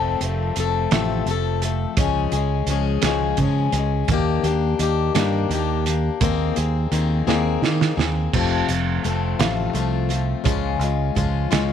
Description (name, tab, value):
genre	folk rock and heartland rock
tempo	57 BPM (dotted quarters)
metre	6/8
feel	straight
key	unclear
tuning	A4 = 440 Hz
part	picked plugged-in swing-style acoustic guitar	accompaniment	0.0-11.7 s	F2 to A4	-22 LUFS	left 9 dB	none
part	fingered electric bass	bass	0.0-11.7 s	F1 to Eb3	-22 LUFS	right 2 dB	none
part	loose indie drum kit	drums	0.2-11.7 s	crash cymbal, hi-hat, kick drum, snare drum	-24 LUFS	right 6 dB	none
room	small room ambience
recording	1960s-style stereo with parts hard left and right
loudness	-19 LUFS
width	side -8 dB against mid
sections	0.0-8.3 A section; 8.3-11.7 B section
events	drum fill 7.3-8.3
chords	0.0 F; 2.0 Db; 4.1 Ebmaj7; 6.2 Abadd9/Eb; 8.3 F; 10.5 Db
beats	0.92 | 1.98 3.04 | 4.10 5.16 | 6.22 7.28 | 8.34 9.40 | 10.46 11.52